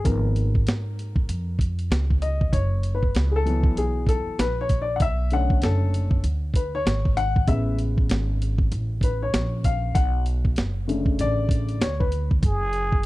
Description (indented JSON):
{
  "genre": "hip hop, jazz-hop",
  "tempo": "97 BPM",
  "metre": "4/4",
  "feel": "swing 62% on 16ths",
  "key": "B dorian",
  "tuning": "A4 = 438 Hz",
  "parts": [
    { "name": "warm upright piano", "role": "accompaniment", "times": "0.0-12.3 s", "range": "C#3 to F#5", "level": "-27 LUFS", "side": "left 3 dB", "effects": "none" },
    { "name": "upright bass", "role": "bass", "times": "0.0-13.0 s", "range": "F#1 to G#2", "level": "-24 LUFS", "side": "equal", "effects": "none" },
    { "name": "boom bap sampler-style drum kit", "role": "drums", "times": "0.1-13.1 s", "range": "hi-hat, kick drum, snare drum", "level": "-23 LUFS", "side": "equal", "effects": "none" },
    { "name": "trumpet with plunger mute", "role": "melody", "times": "12.5-13.1 s", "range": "G#4", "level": "-25 LUFS", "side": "right 1 dB", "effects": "none" }
  ],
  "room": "studio ambience",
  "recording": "dry, close 1970s-style studio recording",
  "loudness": "-21 LUFS",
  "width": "side -18 dB against mid",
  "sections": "0.0-12.4 A section",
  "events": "upright piano solo 0.0-12.4",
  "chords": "0.1 C#9/G#; 2.5 F#7sus4; 5.0 Bm9; 7.5 Amaj7; 10.0 Bm7; 12.4 N.C.",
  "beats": "| 0.06 0.67 1.29 1.91 | 2.53 3.15 3.77 4.38 | 5.00 5.62 6.24 6.86 | 7.48 8.10 8.71 9.33 | 9.95 10.57 11.19 11.81 | 12.43 13.04"
}